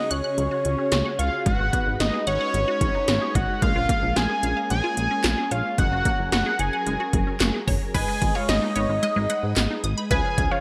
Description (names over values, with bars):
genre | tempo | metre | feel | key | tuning
synth-pop | 111 BPM | 4/4 | straight | G# dorian | A4 = 440 Hz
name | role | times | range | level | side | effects
fat analog lead | melody | 0.0-10.6 s | C#5 to G#5 | -28 LUFS | equal | chorus
ensemble organ-string | sustained chords | 0.0-10.6 s | C#3 to D#5 | -34 LUFS | equal | ensemble chorus
resonant blip pluck | arpeggios | 0.0-10.6 s | E#3 to F#6 | -34 LUFS | equal | phaser, delay
chorused synth bass | bass | 0.1-10.5 s | F#1 to G#2 | -29 LUFS | equal | none
80s electronic pad drums | drums | 0.1-10.5 s | crash cymbal, handclaps, hi-hat, kick drum, snare drum | -27 LUFS | equal | gated reverb
analog pluck | second line | 7.9-10.6 s | B4 to F#5 | -32 LUFS | equal | chorus, delay
room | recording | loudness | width
moderate lush hall reverb, RT60 1.8 s | bright 1980s-style digital production | -23 LUFS | mono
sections
0.0-7.9 A section; 7.9-10.6 B section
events
none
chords
0.0 C#sus4; 1.5 G#m7; 3.6 A#m7; 5.8 F#add9; 7.9 G#m